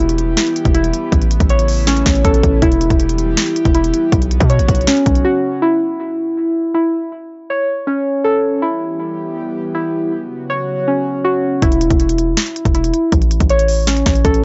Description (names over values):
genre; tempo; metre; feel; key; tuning
hip hop, trap; 160 BPM; 4/4; half-time; E dorian; A4 = 440 Hz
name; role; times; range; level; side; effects
airy breathy pad; sustained chords; 0.0-5.6, 8.6-11.6 s; C#3 to G4; -29 LUFS; equal; chorus
muted felt-like synth keys; arpeggios; 0.0-14.4 s; C#4 to C#5; -19 LUFS; equal; chorus, tape echo
hard-hitting 808-style bass; bass; 0.0-5.2, 11.6-14.4 s; E1 to B2; -18 LUFS; equal; none
trap drum kit; drums; 0.0-5.2, 11.6-14.4 s; hi-hat, kick drum, snare drum; -19 LUFS; equal; none
room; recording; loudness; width
little or no reverb; dry, gritty hardware recording, cassette tape, nothing above 7.8 kHz; -16 LUFS; mono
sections
0.0-5.6 A section; 5.6-11.6 B section; 11.6-14.4 C section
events
break 5.2-5.6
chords
0.0 Em; 1.1 Aadd9; 2.6 Em; 4.1 Bsus2; 5.6 N.C.; 7.1 A; 8.6 Em; 10.1 Bsus2; 11.6 N.C.; 13.1 A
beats
0.00 0.37 0.75 | 1.12 1.50 1.87 2.25 | 2.62 3.00 3.37 3.75 | 4.12 4.50 4.87 5.25 | 5.62 6.00 6.37 6.75 | 7.12 7.50 7.87 8.25 | 8.62 9.00 9.37 9.75 | 10.12 10.50 10.87 11.25 | 11.62 12.00 12.37 12.75 | 13.12 13.50 13.87 14.25